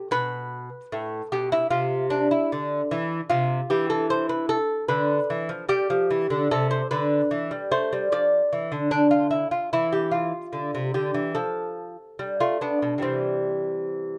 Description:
classical, baroque-style dance for lute; 75 BPM; 4/4; rubato; C major from 3.3 s; A4 = 440 Hz
lute; solo; 0.0-14.2 s; A2 to D5; -25 LUFS; equal
light reverb; dark, warm production; -25 LUFS; mono
0.0-14.2 A section
0.1 Asus2; 1.7 C; 4.9 G7/D; 6.5 C; 8.1 Dm; 9.7 C/E (rootless); 11.4 N.C.; 12.2 G; 13.0 C
| 0.12 0.92 1.71 2.50 | 3.30 4.10 4.90 5.71 | 6.51 7.32 8.12 8.91 | 9.71 10.53 11.35 12.19 | 13.04 13.90

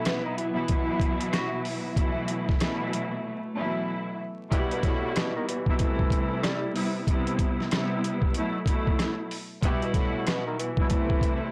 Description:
hip hop, boom-bap hip-hop; 94 BPM; 4/4; swing 62% on 16ths; E minor; A4 = 440 Hz
rich symphonic string section; accompaniment; 0.0-11.5 s; B2 to F#4; -31 LUFS; equal; cassette tape, high-pass filter, low-pass filter
warm studio string section; sustained chords; 0.0-4.5 s; E3 to B3; -42 LUFS; equal
breathy tenor saxophone; melody; 0.1-11.5 s; A2 to F#4; -36 LUFS; equal; high-pass filter, low-pass filter
boom bap sampler-style drum kit; drums; 0.1-11.4 s; hi-hat, kick drum, rim click, snare drum; -29 LUFS; equal
mellow horn section; stabs; 4.5-5.0, 9.6-9.8 s; B3 to G4; -39 LUFS; equal; high-pass filter, low-pass filter, tape echo
light reverb; blown-out, overdriven recording, vinyl crackle, overdrive; -28 LUFS; mono
0.0-4.5 A section; 4.5-11.5 B section
break 3.2-4.5
0.0 Esus2; 4.5 Emadd9; 5.8 Am7; 6.8 Cmaj7; 8.3 B7sus4; 9.6 Emadd9; 10.9 Am7
0.05 0.69 1.33 | 1.97 2.60 3.24 3.88 | 4.52 5.16 5.79 6.43 | 7.07 7.71 8.35 8.99 | 9.62 10.26 10.90

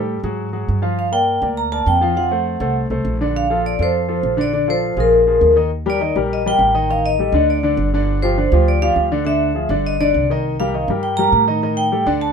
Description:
Afro-Cuban jazz; 203 BPM; 4/4; straight; Bb major; A4 = 440 Hz
warm concert grand piano; accompaniment; 0.0-12.3 s; D3 to F5; -20 LUFS; left 2 dB
upright bass; bass; 0.0-12.3 s; G1 to A2; -21 LUFS; right 1 dB
vibraphone with medium hard mallets; melody; 1.0-12.3 s; Bb4 to Bb5; -17 LUFS; equal
light reverb; minimal, uncompressed stereo recording; -15 LUFS; side -6 dB against mid
0.0-5.7 A section; 5.7-12.3 B section
0.4 Fmadd9; 1.0 Gm7; 2.2 F; 3.3 Bbmaj9; 5.1 Bb5; 5.7 Eb; 6.9 F13/A; 7.5 G5; 8.1 G7sus4; 9.3 Ddim; 9.9 G5; 10.4 Cm7; 11.6 Ebmaj7#11
0.09 0.39 0.68 | 0.98 1.28 1.57 1.87 | 2.17 2.46 2.76 3.05 | 3.35 3.65 3.94 4.24 | 4.53 4.83 5.13 5.42 | 5.72 6.01 6.31 6.61 | 6.90 7.20 7.49 7.79 | 8.08 8.38 8.67 8.97 | 9.27 9.56 9.86 10.15 | 10.45 10.74 11.04 11.33 | 11.63 11.93 12.22

